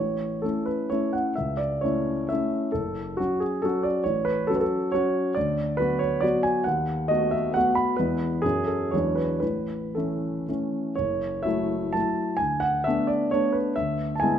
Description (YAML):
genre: classical, romantic triple-time dance for piano with dotted rhythms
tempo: 107-147 BPM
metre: 3/4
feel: rubato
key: A major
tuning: A4 = 440 Hz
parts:
  - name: warm grand piano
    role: solo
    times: 0.0-14.4 s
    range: F#1 to B5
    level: -23 LUFS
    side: equal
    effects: none
room: wet recital hall reverb, RT60 1.4 s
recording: close, detailed microphones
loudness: -23 LUFS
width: side -9 dB against mid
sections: 0.0-11.0 A section; 11.0-14.4 B section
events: none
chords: 0.0 A; 1.4 A/C#; 2.7 F#m; 4.1 F#m/A; 5.4 Bm/D; 6.7 B7/D#; 8.0 E; 8.4 F#m; 8.9 E13; 9.4 A; 11.0 F#m7; 12.4 D5; 13.8 E7/D